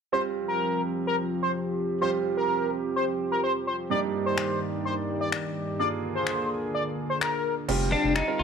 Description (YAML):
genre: dance-pop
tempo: 127 BPM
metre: 4/4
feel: straight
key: F dorian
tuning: A4 = 444 Hz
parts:
  - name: octave-doubled lead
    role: melody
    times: 0.1-7.5 s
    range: Bb4 to D5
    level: -28 LUFS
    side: left 2 dB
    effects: chorus, phaser, slapback echo
  - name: clear concert grand piano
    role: accompaniment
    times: 0.1-8.4 s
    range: G2 to Bb4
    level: -32 LUFS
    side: right 10 dB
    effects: none
  - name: chorused pulse-width pad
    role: sustained chords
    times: 0.1-7.7 s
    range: G2 to D5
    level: -31 LUFS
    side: equal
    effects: none
  - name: house drum kit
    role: drums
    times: 4.4-8.3 s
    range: crash cymbal, finger snaps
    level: -32 LUFS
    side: left 7 dB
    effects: none
  - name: round analog bass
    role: bass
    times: 7.7-8.4 s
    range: F1 to G1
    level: -28 LUFS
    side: left 2 dB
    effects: none
  - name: twelve-string electric guitar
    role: melody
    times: 7.9-8.4 s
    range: D4 to F4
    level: -24 LUFS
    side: left 3 dB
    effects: spring reverb, slapback echo
room: light reverb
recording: 1960s-style stereo with parts hard left and right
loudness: -25 LUFS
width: side -6 dB against mid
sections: 0.1-7.7 A section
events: none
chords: 0.1 Fsus2; 3.9 Ebmaj7/G; 5.8 Bb7; 7.7 Fsus2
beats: | 0.13 0.60 1.07 1.54 | 2.02 2.49 2.96 3.44 | 3.91 4.38 4.85 5.32 | 5.80 6.27 6.74 7.21 | 7.69 8.16